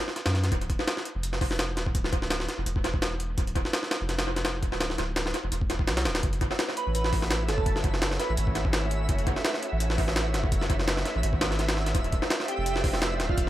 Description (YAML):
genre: drum and bass, jungle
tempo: 168 BPM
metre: 4/4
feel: swing 54% on 16ths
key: unclear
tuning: A4 = 441 Hz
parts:
  - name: jungle sampler-style drum kit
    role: drums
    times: 0.1-13.5 s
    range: hi-hat, kick drum, snare drum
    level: -27 LUFS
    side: equal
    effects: overdrive, analog delay
  - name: soft dub sub bass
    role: bass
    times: 0.3-13.5 s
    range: D1 to F#2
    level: -30 LUFS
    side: equal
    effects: none
  - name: lush unison pad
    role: sustained chords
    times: 6.2-13.5 s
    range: A3 to F#4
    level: -36 LUFS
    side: equal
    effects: chorus
  - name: twinkling granular texture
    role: texture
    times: 6.8-13.5 s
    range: E5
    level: -37 LUFS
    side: right 3 dB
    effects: built-in reverb
  - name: airy dreamy lead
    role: melody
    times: 6.8-8.3, 12.5-13.5 s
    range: F4 to B4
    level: -32 LUFS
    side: right 3 dB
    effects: chorus, dub echo
room: light reverb, digital ambience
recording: echo-heavy mix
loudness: -25 LUFS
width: side -14 dB against mid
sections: 0.0-13.5 A section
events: none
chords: 0.0 N.C.; 0.5 Dm; 6.2 F#m7; 11.9 Dm7